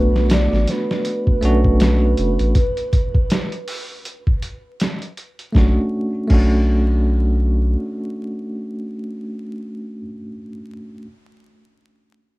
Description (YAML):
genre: trip hop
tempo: 80 BPM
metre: 4/4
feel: swing 58% on 16ths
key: B minor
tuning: A4 = 440 Hz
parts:
  - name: pure breathy sine lead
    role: melody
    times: 0.0-4.8 s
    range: B4 to D5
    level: -25 LUFS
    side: right 2 dB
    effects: phaser, lush chorus, tape echo
  - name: bell-like tine electric piano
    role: accompaniment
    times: 0.0-11.1 s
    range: A3 to F#4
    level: -22 LUFS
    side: equal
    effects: tremolo, tape echo
  - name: round analog bass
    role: bass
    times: 0.0-7.8 s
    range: F#1 to B1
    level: -16 LUFS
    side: equal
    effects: none
  - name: trip hop sampler-style drum kit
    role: drums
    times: 0.2-6.5 s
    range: crash cymbal, hi-hat, kick drum, snare drum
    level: -19 LUFS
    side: equal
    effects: none
room: light reverb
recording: rough home demo mix, vinyl crackle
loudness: -16 LUFS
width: side -20 dB against mid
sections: 0.0-5.6 A section; 5.6-8.6 B section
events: none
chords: 0.0 Bm7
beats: 0.30 1.05 1.80 | 2.55 3.30 4.05 4.80 | 5.55 6.30 7.05 7.80